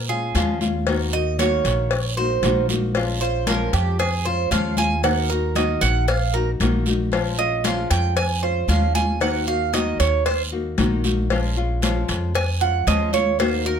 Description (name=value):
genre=latin, Cuban son and guajira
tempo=115 BPM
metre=4/4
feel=straight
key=Bb minor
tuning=A4 = 439 Hz
part: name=Cuban tres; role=arpeggios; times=0.0-13.8 s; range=G4 to Ab5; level=-23 LUFS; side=right 8 dB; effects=none
part: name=upright bass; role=bass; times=0.0-13.8 s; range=Bb1 to Bb2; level=-23 LUFS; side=equal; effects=none
part: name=nylon-string guitar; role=accompaniment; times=0.1-13.8 s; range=Eb3 to Gb4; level=-25 LUFS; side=left 5 dB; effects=none
part: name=congas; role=percussion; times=0.1-13.8 s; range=none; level=-28 LUFS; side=left 2 dB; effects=none
part: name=guiro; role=percussion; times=0.3-13.8 s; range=none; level=-32 LUFS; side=right 6 dB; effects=none
part: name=cowbell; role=percussion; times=0.4-13.7 s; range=none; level=-27 LUFS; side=left 6 dB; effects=none
room=light reverb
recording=close, detailed microphones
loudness=-18 LUFS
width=side -7 dB against mid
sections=0.0-13.8 A section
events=Cuban tres solo 0.0-13.8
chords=0.0 Bbm7; 0.9 Ebm; 3.0 Bbm7; 5.0 Ebm; 7.1 Bbm7; 9.2 Ebm; 11.3 Bbm7